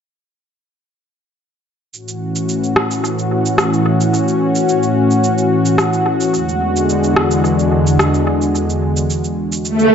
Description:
sunset chillout; 109 BPM; 4/4; straight; A major; A4 = 440 Hz
lush unison pad; sustained chords; 1.9-9.9 s; E2 to F#4; -14 LUFS; left 1 dB; chorus
electronic cabasa and rim click; drums; 1.9-9.9 s; -20 LUFS; equal; analog delay
swell; sound effects; 9.7-9.9 s; -10 LUFS; right 1 dB
wet echo chamber reverb, RT60 1.7 s; echo-heavy mix, nothing above 7.7 kHz; -13 LUFS; side -7 dB against mid
1.9-9.9 A section
swell 9.7
1.9 A6; 6.3 E9

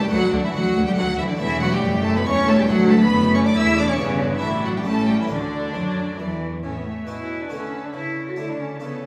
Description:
classical, baroque-style concerto movement with solo episodes; 139 BPM; 3/4; straight; D major; A4 = 439 Hz
rich cello; melody; 0.0-9.1 s; C#3 to F#4; -26 LUFS; equal
rich chamber violin section; melody; 0.0-9.1 s; C#5 to E6; -32 LUFS; equal
rich chamber violin section; second line; 0.0-9.1 s; C#4 to E5; -31 LUFS; equal
harpsichord; accompaniment; 0.0-9.1 s; D2 to G4; -37 LUFS; equal
rich chamber viola section; accompaniment; 0.1-9.1 s; A3 to C#5; -28 LUFS; equal
rich symphonic cello section; bass; 0.1-9.1 s; D2 to F#3; -29 LUFS; equal
warm chamber double bass section; bass; 0.1-6.6 s; E1 to F#2; -30 LUFS; equal
wet recital hall reverb, RT60 1.4 s; recorded in a church or concert hall, small room ambience; -21 LUFS; mono
0.0-6.6 A section; 6.6-9.1 B section
0.1 D; 1.4 A/E; 2.7 D; 4.0 G; 4.4 D/A; 4.9 A7; 5.3 D; 6.6 A; 7.9 A/C#

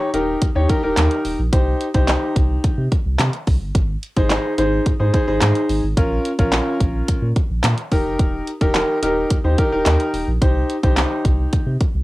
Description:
dance-pop; 108 BPM; 4/4; straight; A4 = 439 Hz
warm concert grand piano; accompaniment; 0.0-11.7 s; Db4 to Db5; -20 LUFS; equal; sidechain pumping, cassette tape
saturated sub bass; bass; 0.1-12.0 s; Eb1 to C3; -20 LUFS; equal; sidechain pumping
pop drum kit; drums; 0.1-11.9 s; handclaps, hi-hat, kick drum, snare drum; -19 LUFS; equal; cassette tape
light reverb; home recording on cassette; -16 LUFS; side -18 dB against mid
0.0-12.0 A section
0.0 Eb; 1.5 Cm; 3.8 Ab; 6.0 Bbm; 7.9 Eb; 10.4 Cm

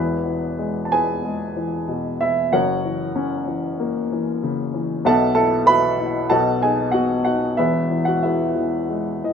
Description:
classical, lyrical solo piano; 94 BPM; 4/4; rubato; E major; A4 = 442 Hz
warm upright piano; solo; 0.0-9.3 s; E1 to B5; -18 LUFS; equal
light reverb; -18 LUFS; side -7 dB against mid
0.0-9.3 A section
upright piano fill 8.9-9.3
0.0 E; 2.5 F#7; 5.0 B7sus4; 6.3 B7; 7.6 E

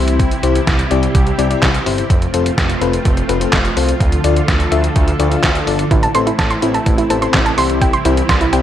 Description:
synth-pop; 126 BPM; 4/4; straight; A4 = 440 Hz
FM electric piano with tremolo; accompaniment; 0.0-8.6 s; C4 to F5; -19 LUFS; left 8 dB
string machine, cellos; sustained chords; 0.0-8.6 s; C3 to A4; -20 LUFS; right 2 dB; ensemble chorus
smooth synth bass; bass; 0.0-8.6 s; F1 to D2; -18 LUFS; right 1 dB
detuned 8-bit digital drum machine; drums; 0.1-8.6 s; handclaps, hi-hat, kick drum, snare drum; -16 LUFS; equal; gated reverb
soft round pluck; arpeggios; 5.9-8.6 s; E4 to C6; -18 LUFS; right 4 dB; chorus, slapback echo
light reverb, digital ambience; -12 LUFS; side -11 dB against mid
0.0-8.6 A section
0.0 C; 2.1 F; 4.0 Dm; 5.9 Am; 7.6 C

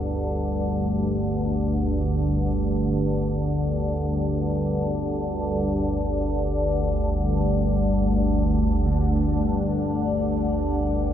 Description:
dark ambient drone; free time; A4 = 440 Hz
dark baby grand piano; arpeggios; 0.0-11.1 s; C2 to D3; -38 LUFS; right 2 dB; ensemble chorus, ping-pong delay, shimmer reverb
organ-like drone; drone; 0.0-11.1 s; G1 to D2; -22 LUFS; equal; ensemble chorus, built-in reverb
wet huge ambient reverb, RT60 7.7 s; dreamy mix soaked in reverb; -21 LUFS; side -10 dB against mid
0.0-11.1 A section
fade-in on grand piano 0.0-11.1
0.0 G5

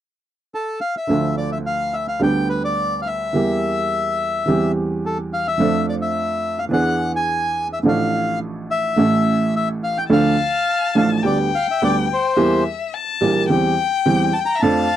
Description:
tango; 106 BPM; 4/4; rubato; D minor; A4 = 440 Hz
bandoneon; melody; 0.5-15.0 s; A4 to Bb5; -21 LUFS; left 2 dB
clear upright piano; accompaniment; 1.1-14.9 s; A1 to A4; -19 LUFS; right 2 dB
warm violin; second line; 10.1-15.0 s; E5 to A5; -22 LUFS; left 9 dB
light reverb; dry, close 1970s-style studio recording; -17 LUFS; side -11 dB against mid
0.0-1.1 A section; 1.1-10.1 B section; 10.1-15.0 C section
0.0 N.C.; 1.1 Dm; 2.2 G/D; 3.3 Edim; 4.5 C/E; 5.6 Dm/F; 6.7 E7; 7.8 Dm/A; 9.0 A; 10.1 Dm; 11.2 G/D; 12.4 Edim; 13.5 C/E

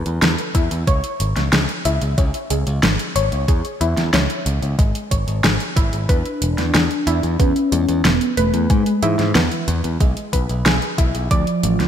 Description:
synthwave; 92 BPM; 4/4; straight; A4 = 441 Hz
analog pluck; arpeggios; 0.0-11.5 s; G#3 to D5; -25 LUFS; equal; chorus, ping-pong delay
modern bright picked electric bass; bass; 0.0-11.9 s; E1 to G#2; -20 LUFS; equal; sidechain pumping
pop drum kit; drums; 0.1-11.9 s; hi-hat, snare drum; -21 LUFS; equal; overdrive
electronic kick drum; drums; 0.5-11.4 s; -17 LUFS; equal; overdrive
warm velvety synth lead; melody; 6.1-11.9 s; E3 to D4; -21 LUFS; equal; chorus, cassette tape, digital delay
light reverb; bright 1980s-style digital production; -16 LUFS; side -9 dB against mid
0.0-11.9 A section
0.0 Asus2; 0.9 C#m; 6.1 E; 11.3 Dm

